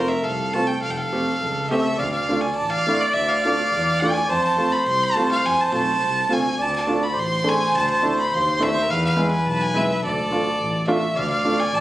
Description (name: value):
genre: klezmer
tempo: 104 BPM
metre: 2/4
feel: straight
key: D dorian sharp4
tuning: A4 = 438 Hz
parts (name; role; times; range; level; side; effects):
- clear violin; melody; 0.0-11.8 s; D5 to C6; -23 LUFS; equal; none
- mellow harmonica; second line; 0.0-11.8 s; A4 to D5; -24 LUFS; equal; none
- clear upright piano; accompaniment; 0.0-11.6 s; G#3 to G#4; -23 LUFS; right 1 dB; none
- warm double bass; bass; 0.2-11.8 s; F1 to F2; -27 LUFS; equal; none
room: moderate studio reverb, RT60 0.6 s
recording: recorded on a phone in the room, club reverb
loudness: -18 LUFS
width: side -15 dB against mid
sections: 0.0-2.0 A section; 2.0-11.2 B section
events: speeding up 0.0-11.8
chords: 0.0 F; 2.0 Dm; 4.3 F; 6.6 D5; 8.9 E; 10.0 Dm